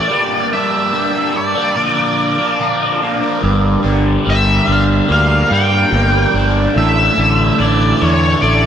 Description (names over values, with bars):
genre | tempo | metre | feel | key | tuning
rock | 72 BPM | 4/4 | straight | unclear | A4 = 440 Hz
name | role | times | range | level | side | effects
octave-fuzz lead guitar | melody | 0.0-8.7 s | C#5 to G5 | -16 LUFS | equal | wah, distortion, diffuse ambient delay
mellow tonewheel organ | sustained chords | 0.0-8.7 s | D4 to Bb5 | -23 LUFS | right 5 dB | slow rotary speaker
overdriven electric guitar | riff | 0.0-8.7 s | G2 to D4 | -17 LUFS | left 1 dB | phaser
fuzz fingered electric bass | bass | 3.4-8.7 s | G1 to G2 | -15 LUFS | equal | overdrive
room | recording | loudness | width
moderate lush hall reverb, RT60 2.9 s | dreamy mix soaked in reverb, faint mains hum | -12 LUFS | side -9 dB against mid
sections
0.0-3.4 A section; 3.4-8.7 B section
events
break 0.1-3.4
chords
0.1 Gmadd9; 1.8 Bb; 3.4 Gm; 6.8 Asus4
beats
| 0.08 0.92 1.76 2.59 | 3.43 4.26 5.10 5.93 | 6.77 7.60 8.44